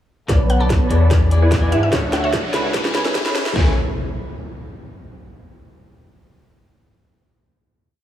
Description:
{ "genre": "future bass", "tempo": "147 BPM", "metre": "4/4", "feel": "half-time", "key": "A major", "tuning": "A4 = 438 Hz", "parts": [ { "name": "clean electric guitar", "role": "accompaniment", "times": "0.3-3.7 s", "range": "B2 to D5", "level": "-27 LUFS", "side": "left 2 dB", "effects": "sidechain pumping, tape echo" }, { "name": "rich chamber string section", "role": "sustained chords", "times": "0.3-3.7 s", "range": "C#3 to C#5", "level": "-31 LUFS", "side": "equal", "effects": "none" }, { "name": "dense compressed supersaw", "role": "riff", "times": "0.3-3.7 s", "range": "A3 to A5", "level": "-24 LUFS", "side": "equal", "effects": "sidechain pumping, low-pass filter, tape echo" }, { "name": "saturated sub bass", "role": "bass", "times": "0.3-3.7 s", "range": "A1 to G#2", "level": "-18 LUFS", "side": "left 1 dB", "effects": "sidechain pumping" }, { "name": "dubstep drum kit", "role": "drums", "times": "0.3-3.7 s", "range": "kick drum, snare drum", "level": "-19 LUFS", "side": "equal", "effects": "none" }, { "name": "trap drum kit", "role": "drums", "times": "0.3-3.5 s", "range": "hi-hat, snare drum", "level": "-24 LUFS", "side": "equal", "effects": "none" }, { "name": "riser and impact", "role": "sound effects", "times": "1.2-5.2 s", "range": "none", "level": "-28 LUFS", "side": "equal", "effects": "none" }, { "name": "mallet-like synth pluck", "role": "melody", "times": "0.5-2.6 s", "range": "E5 to A5", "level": "-26 LUFS", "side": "right 2 dB", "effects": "chorus, sidechain pumping, tape echo" } ], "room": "light reverb", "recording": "high-pass filter, small room ambience", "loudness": "-15 LUFS", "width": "side -12 dB against mid", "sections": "0.3-3.6 build; 3.6-5.2 final chord", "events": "build-up 0.3-3.6; drum fill 0.3-3.6; filter sweep on supersaw synth 0.3-3.6; filter sweep 0.3-3.6; riser 1.2-3.6", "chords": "0.3 Bm7; 1.1 E7; 1.9 Dmaj7; 2.7 Amaj7/C#; 3.6 Amaj7", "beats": "| 0.29 0.70 1.11 1.52 | 1.93 2.33 2.74 3.15 | 3.56 3.97 4.38 4.78" }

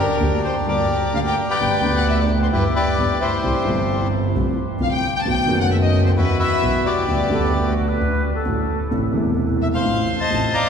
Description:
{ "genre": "tango", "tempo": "131 BPM", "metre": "4/4", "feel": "rubato", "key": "G major", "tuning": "A4 = 440 Hz", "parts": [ { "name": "bandoneon", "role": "melody", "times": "0.0-10.7 s", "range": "D4 to Bb5", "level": "-22 LUFS", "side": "left 2 dB", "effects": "none" }, { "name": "warm studio violin section", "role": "second line", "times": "0.0-10.7 s", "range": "Bb4 to Bb5", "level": "-26 LUFS", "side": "left 3 dB", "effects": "none" }, { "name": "dark grand piano", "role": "accompaniment", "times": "0.2-10.5 s", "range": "E1 to G4", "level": "-22 LUFS", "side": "equal", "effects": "none" }, { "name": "warm double bass", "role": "bass", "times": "0.2-10.5 s", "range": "E1 to E2", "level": "-23 LUFS", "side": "right 1 dB", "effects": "none" }, { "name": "mellow hollow silver concert flute", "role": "second line", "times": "7.3-9.2 s", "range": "F#4 to B4", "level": "-29 LUFS", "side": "right 1 dB", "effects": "none" } ], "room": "wet cathedral reverb, RT60 6.0 s", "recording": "recorded in a church or concert hall", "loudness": "-17 LUFS", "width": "side -7 dB against mid", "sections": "0.0-1.6 A section; 1.6-10.7 B section", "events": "none", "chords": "0.0 Gm; 1.6 Gadd9; 2.5 Em/G; 3.4 C; 4.3 F6/C; 5.3 B7; 6.2 Esus2; 7.1 G/D; 8.0 D; 8.9 Am; 9.9 F7/A", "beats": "0.21 0.67 1.15 | 1.61 2.08 2.54 2.99 | 3.44 3.90 4.35 4.80 | 5.25 5.71 6.17 6.62 | 7.08 7.54 8.00 8.47 | 8.93 9.39 9.85 10.31" }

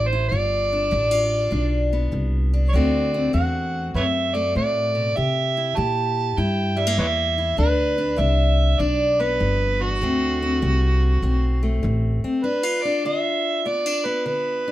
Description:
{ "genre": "acoustic country blues, solo or duo", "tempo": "99 BPM", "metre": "4/4", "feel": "swing 66% on 8ths", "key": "unclear", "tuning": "A4 = 440 Hz", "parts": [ { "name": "overdriven harmonica", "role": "melody", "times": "0.0-14.7 s", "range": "F#4 to A5", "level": "-23 LUFS", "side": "right 2 dB", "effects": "none" }, { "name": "fingerpicked steel-string acoustic guitar", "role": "accompaniment", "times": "0.0-14.7 s", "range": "D2 to G4", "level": "-25 LUFS", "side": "left 2 dB", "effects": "none" }, { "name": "upright bass", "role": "bass", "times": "0.0-12.3 s", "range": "G1 to C3", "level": "-22 LUFS", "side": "equal", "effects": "none" } ], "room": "moderate studio reverb, RT60 0.6 s", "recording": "minimal, uncompressed stereo recording", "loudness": "-19 LUFS", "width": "side -14 dB against mid", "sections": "0.0-12.4 A section; 12.4-14.7 A section", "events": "none", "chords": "0.3 G7; 2.7 D7; 5.2 C7; 7.6 G7; 10.0 D7; 12.4 G7", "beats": "| 0.31 0.92 1.52 2.13 | 2.73 3.34 3.95 4.55 | 5.16 5.77 6.37 6.98 | 7.59 8.19 8.80 9.41 | 10.02 10.62 11.23 11.84 | 12.45 13.05 13.66 14.27" }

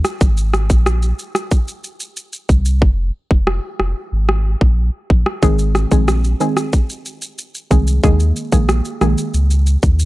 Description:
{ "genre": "dancehall", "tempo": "92 BPM", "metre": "4/4", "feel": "straight", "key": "unclear", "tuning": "A4 = 441 Hz", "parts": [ { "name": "warm sub bass", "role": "bass", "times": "0.0-10.1 s", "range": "F1 to Eb2", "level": "-15 LUFS", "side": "equal", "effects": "none" }, { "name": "island pop drum kit", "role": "drums", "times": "0.0-10.1 s", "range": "kick drum, rim click, shaker", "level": "-16 LUFS", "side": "equal", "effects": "none" }, { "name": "soft round pluck", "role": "accompaniment", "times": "5.4-9.2 s", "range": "Eb3 to Ab4", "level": "-19 LUFS", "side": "right 1 dB", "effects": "chorus" } ], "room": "digital ambience", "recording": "none", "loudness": "-14 LUFS", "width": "side -18 dB against mid", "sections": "0.0-10.1 A section", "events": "hi-hats muted 2.8-5.4", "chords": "0.2 Ab; 2.8 Fm; 5.4 Ab; 8.0 Ebsus4", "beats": "| 0.21 0.86 1.51 2.17 | 2.82 3.47 4.12 4.78 | 5.43 6.08 6.73 7.38 | 8.04 8.69 9.34 9.99" }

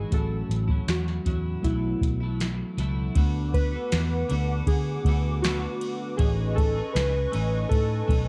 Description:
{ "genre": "indie pop, bedroom pop", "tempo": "79 BPM", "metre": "4/4", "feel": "straight", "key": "unclear", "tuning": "A4 = 437 Hz", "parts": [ { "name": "warbly lo-fi synth keys", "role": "melody", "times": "0.0-8.3 s", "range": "E4 to B4", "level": "-34 LUFS", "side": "equal", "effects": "subtle chorus, cassette tape" }, { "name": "reed electric piano", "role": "accompaniment", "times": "0.0-3.2 s", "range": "E3 to F#4", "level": "-40 LUFS", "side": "equal", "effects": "cassette tape" }, { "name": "twelve-string electric guitar", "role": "accompaniment", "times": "0.0-8.3 s", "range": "A2 to G#4", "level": "-36 LUFS", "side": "equal", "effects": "subtle chorus, vibrato effect, cassette tape" }, { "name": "vintage muted fingered electric bass", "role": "bass", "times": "0.0-8.3 s", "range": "A1 to D3", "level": "-29 LUFS", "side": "equal", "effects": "none" }, { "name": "soft vintage rhythm box", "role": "drums", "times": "0.1-8.3 s", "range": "hi-hat, kick drum, ride cymbal, snare drum", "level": "-28 LUFS", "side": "equal", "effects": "none" }, { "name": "hollow soft pad", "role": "sustained chords", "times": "3.2-8.3 s", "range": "B4 to D6", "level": "-39 LUFS", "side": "equal", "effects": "ensemble chorus, cassette tape" } ], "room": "light reverb, digital ambience", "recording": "home recording on cassette", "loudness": "-26 LUFS", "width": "mono", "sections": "0.0-3.2 A section; 3.2-8.3 B section", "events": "none", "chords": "0.1 A6; 1.6 B7sus4; 3.2 D6; 6.2 Amaj9#11", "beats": "| 0.12 0.87 1.63 2.39 | 3.15 3.91 4.67 5.43 | 6.19 6.95 7.71" }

